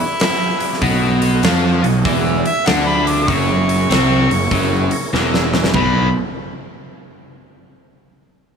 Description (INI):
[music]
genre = blues rock power trio and southern rock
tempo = 97 BPM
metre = 4/4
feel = swing 65% on 8ths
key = unclear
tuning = A4 = 440 Hz
[part]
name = mellow harmonica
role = melody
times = 0.0-6.1 s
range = E4 to D6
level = -21 LUFS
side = right 1 dB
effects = overdrive
[part]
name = percussive tonewheel organ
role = sustained chords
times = 0.0-6.1 s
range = D#4 to F#5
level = -27 LUFS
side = right 4 dB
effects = slow rotary speaker, chorus vibrato
[part]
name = huge arena drum kit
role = drums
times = 0.2-5.9 s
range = hi-hat, kick drum, snare drum, toms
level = -20 LUFS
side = equal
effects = none
[part]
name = overdriven semi-hollow guitar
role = riff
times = 0.8-6.1 s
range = E2 to E#4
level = -18 LUFS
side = left 1 dB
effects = none
[part]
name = fuzz fingered electric bass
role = bass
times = 0.8-6.1 s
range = E1 to E#2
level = -18 LUFS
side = right 1 dB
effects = overdrive
[sound]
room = light reverb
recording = none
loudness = -13 LUFS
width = side -6 dB against mid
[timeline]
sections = 0.0-5.7 A section; 5.7-8.2 B section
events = drum fill 5.1-5.7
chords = 0.0 E7; 0.8 B7; 2.1 E7; 3.3 F#7; 5.7 B7